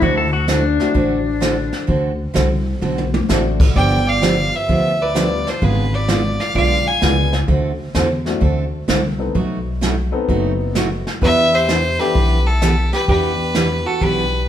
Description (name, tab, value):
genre	country, western swing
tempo	129 BPM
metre	4/4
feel	swing 66% on 8ths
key	D mixolydian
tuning	A4 = 440 Hz
part	pedal steel guitar	second line	0.0-1.8 s	D4 to A4	-20 LUFS	left 4 dB	none
part	picked steel-string acoustic guitar	accompaniment	0.0-14.2 s	B2 to A4	-22 LUFS	right 3 dB	none
part	upright bass	bass	0.0-14.5 s	F#1 to E2	-20 LUFS	equal	none
part	jazz brush drum kit	drums	0.0-14.5 s	brushed snare drum, crash cymbal, hi-hat, kick drum, snare drum, toms	-21 LUFS	equal	none
part	warm upright piano	accompaniment	0.8-14.4 s	G3 to A4	-26 LUFS	left 5 dB	none
part	clear fiddle	melody	3.8-7.3, 11.2-14.5 s	A4 to G#5	-19 LUFS	left 1 dB	none
part	vintage hollow-body jazz guitar	second line	3.8-7.3, 11.2-14.5 s	E4 to E#5	-24 LUFS	right 2 dB	none
room	wet large studio reverb, RT60 1.3 s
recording	band playing live in one room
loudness	-15 LUFS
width	side -10 dB against mid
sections	0.0-14.5 A section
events	drum fill 2.8-3.3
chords	0.0 D7; 3.8 G7; 5.6 G#dim7; 7.5 D7; 9.3 B7b9; 11.2 Em7